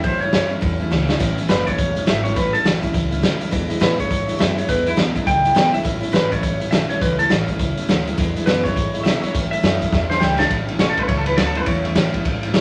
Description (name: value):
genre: rockabilly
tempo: 206 BPM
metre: 4/4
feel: swing 61% on 8ths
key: A major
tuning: A4 = 445 Hz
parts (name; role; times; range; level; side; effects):
- electric guitar through a small old amp; melody; 0.0-11.8 s; E4 to G5; -23 LUFS; equal; none
- picked steel-string acoustic guitar; accompaniment; 0.0-12.6 s; E2 to E4; -26 LUFS; equal; none
- upright bass; bass; 0.0-12.6 s; E1 to B2; -29 LUFS; equal; none
- raw garage drum kit; drums; 0.0-12.6 s; hi-hat, kick drum, ride cymbal, snare drum; -22 LUFS; equal; none
room: moderate studio ambience, RT60 0.5 s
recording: faint mains hum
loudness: -19 LUFS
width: mono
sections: 0.0-1.2 A section; 1.2-10.5 B section; 10.5-12.6 C section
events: drum fill 0.9, 9.9-10.5; clean electric guitar solo 10.5-12.6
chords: 0.0 A; 3.5 E7; 5.9 A; 8.2 E7; 9.3 A